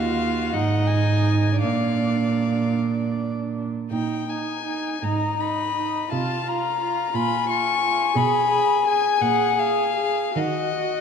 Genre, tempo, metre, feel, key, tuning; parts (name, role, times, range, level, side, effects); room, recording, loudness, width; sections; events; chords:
classical, slow romantic movement for string quartet; 50-59 BPM (dotted quarters); 6/8; rubato; A4 = 439 Hz
rich violin; melody; 0.0-11.0 s; Eb5 to Db6; -26 LUFS; left 8 dB
warm violin; second line; 0.0-11.0 s; Gb4 to Ab5; -25 LUFS; left 6 dB
rich viola; accompaniment; 0.0-11.0 s; D4 to Ab4; -27 LUFS; right 5 dB
warm cello; bass; 0.0-11.0 s; Eb2 to Eb3; -24 LUFS; right 4 dB
moderate scoring stage reverb, RT60 1.6 s; dark, warm production; -20 LUFS; side -6 dB against mid
0.0-11.0 A section
0.0 Ebm; 0.6 Ab5; 1.6 Bb; 3.9 Eb5/Bb; 5.0 Abm; 6.1 F5/C; 7.1 Bbm; 8.2 Abm/Cb; 9.2 Bb5; 10.4 Ebm